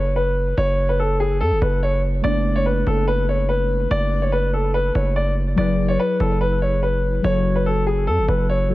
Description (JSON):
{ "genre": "hip hop, trap", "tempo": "144 BPM", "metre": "4/4", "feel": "half-time", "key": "unclear", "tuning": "A4 = 436 Hz", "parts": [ { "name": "dark concert grand piano", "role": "melody", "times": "0.0-8.7 s", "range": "G#4 to D5", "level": "-21 LUFS", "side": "left 1 dB", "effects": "low-pass filter, digital delay" }, { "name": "distorted 808-style bass", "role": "bass", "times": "0.0-8.7 s", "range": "F#1 to F#2", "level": "-21 LUFS", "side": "equal", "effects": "distortion" }, { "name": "muted felt-like synth keys", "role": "accompaniment", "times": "2.2-8.7 s", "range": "F#3 to C#5", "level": "-25 LUFS", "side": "left 2 dB", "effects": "chorus, low-pass filter" } ], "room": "small room ambience", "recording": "none", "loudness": "-17 LUFS", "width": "side -17 dB against mid", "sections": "0.0-8.7 A section", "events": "none", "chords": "0.0 B5/F#; 2.2 Bm7/F#; 5.6 E/F#; 7.2 F#m" }